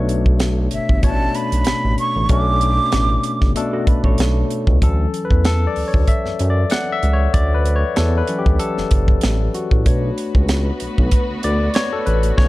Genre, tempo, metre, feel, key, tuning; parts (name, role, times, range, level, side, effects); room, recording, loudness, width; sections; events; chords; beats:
lush 1970s-style soul; 95 BPM; 4/4; swing 54% on 16ths; D major; A4 = 440 Hz
barky tine electric piano; accompaniment; 0.0-12.5 s; B2 to F#5; -22 LUFS; left 3 dB; medium stereo tremolo
smooth synth bass; bass; 0.0-12.5 s; F#1 to F#2; -18 LUFS; equal
tight funk drum kit; drums; 0.1-12.5 s; hi-hat, kick drum, snare drum; -18 LUFS; equal
breathy jazz flute; melody; 0.7-3.5 s; E5 to D6; -21 LUFS; right 2 dB; tape echo
electric guitar through a small old amp; riff; 3.7-4.8 s; F#4 to C#5; -28 LUFS; right 5 dB
rich studio string section; sustained chords; 9.9-12.5 s; A3 to B4; -27 LUFS; equal
studio reverb; dark, warm production; -15 LUFS; side -18 dB against mid
0.0-4.8 A section; 4.8-12.5 B section
tine electric piano solo 4.8-12.5
0.0 Bm9; 4.8 Dmaj7; 9.9 Bm9
0.41 1.04 1.67 | 2.30 2.93 3.56 4.19 | 4.82 5.45 6.08 6.71 | 7.34 7.97 8.60 9.23 | 9.86 10.49 11.12 11.76 | 12.39